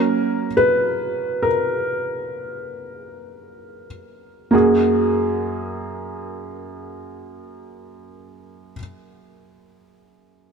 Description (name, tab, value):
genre	pop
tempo	free time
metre	none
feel	none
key	F# major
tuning	A4 = 440 Hz
part	felt-muted upright piano	accompaniment	0.0-10.5 s	F#2 to B4	-19 LUFS	right 1 dB	none
room	moderate lush hall reverb, RT60 2.7 s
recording	dark, warm production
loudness	-18 LUFS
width	side -6 dB against mid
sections	0.0-4.5 A section; 4.5-9.7 B section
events	slowing down 0.0-4.5; felt piano solo 0.0-4.5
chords	0.0 F#; 4.5 F#add9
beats	free time